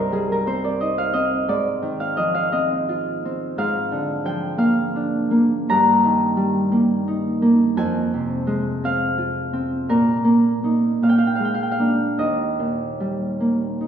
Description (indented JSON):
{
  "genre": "classical, solo harp piece",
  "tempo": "49-60 BPM (dotted quarters)",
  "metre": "6/8",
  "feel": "rubato",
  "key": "Eb major",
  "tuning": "A4 = 440 Hz",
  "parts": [
    { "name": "Celtic harp", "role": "solo", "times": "0.0-13.9 s", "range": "C2 to Bb5", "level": "-18 LUFS", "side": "equal", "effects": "none" }
  ],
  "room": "wet recital hall reverb, RT60 1.5 s",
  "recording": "recorded in a church or concert hall, lossy compression artefacts",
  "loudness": "-18 LUFS",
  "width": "side -8 dB against mid",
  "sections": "0.0-13.9 A section",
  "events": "none",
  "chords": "0.0 Cm; 1.5 Fm7/Ab; 3.6 Bb7/Ab; 5.7 Eb/G; 7.8 Fm; 9.9 Eb5/Bb; 11.0 Bb7; 12.2 Eb"
}